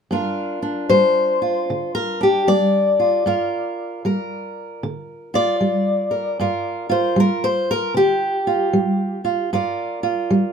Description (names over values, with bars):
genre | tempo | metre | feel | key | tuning
acoustic country blues, solo or duo | 76 BPM | 4/4 | swing 64% on 8ths | G minor | A4 = 439 Hz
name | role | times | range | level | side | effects
fingerpicked steel-string acoustic guitar | solo | 0.1-10.5 s | G2 to D5 | -17 LUFS | equal | none
room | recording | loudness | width
moderate small room reverb, RT60 0.5 s | minimal, uncompressed stereo recording | -17 LUFS | side -7 dB against mid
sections
0.1-10.5 A section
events
steel-string acoustic guitar solo 0.1-10.5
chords
0.1 Gm7